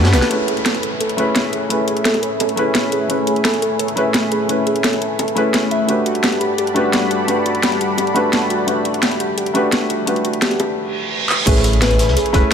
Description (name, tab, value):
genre	liquid drum and bass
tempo	172 BPM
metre	4/4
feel	straight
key	unclear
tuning	A4 = 438 Hz
part	felt-muted upright piano	accompaniment	0.0-12.5 s	A3 to B4	-20 LUFS	left 1 dB	digital delay
part	lush unison pad	sustained chords	0.0-12.5 s	G3 to B5	-23 LUFS	left 1 dB	chorus, phaser, sidechain pumping
part	sub bass with octave	bass	0.0-0.2, 11.5-12.4 s	E1 to G2	-16 LUFS	equal	none
part	crunchy breakbeat drum kit	drums	0.0-0.3, 11.5-12.5 s	hi-hat, snare drum	-26 LUFS	equal	high-pass filter on hats, studio reverb, high-pass filter on snare, high-pass filter on room
part	drum and bass drum kit	drums	0.0-12.4 s	crash cymbal, handclaps, hi-hat, snare drum	-20 LUFS	equal	overdrive, studio reverb
part	harp-like synth pluck	arpeggios	0.1-12.5 s	F#4 to E5	-23 LUFS	right 1 dB	chorus, digital delay
part	downlifter, reverse cymbal and impact	sound effects	0.3-3.1, 10.9-12.5 s	none	-25 LUFS	right 2 dB	none
part	bongos	percussion	1.4-10.7 s	none	-27 LUFS	equal	none
part	electronic kick drum	drums	11.5-12.4 s	none	-15 LUFS	equal	overdrive, studio reverb
room	light reverb, studio ambience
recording	none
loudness	-15 LUFS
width	side -7 dB against mid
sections	0.3-11.5 A section; 11.5-12.5 B section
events	break 0.0-0.3; drum fill 0.0-0.3, 11.3; band accent 0.2; filter sweep on analog synth pad 0.3-11.5; reverse cymbal 10.9-11.5; drop 11.5-12.5; impact 11.5-12.5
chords	0.3 Amaj9; 5.9 Gmaj9; 11.5 Amaj9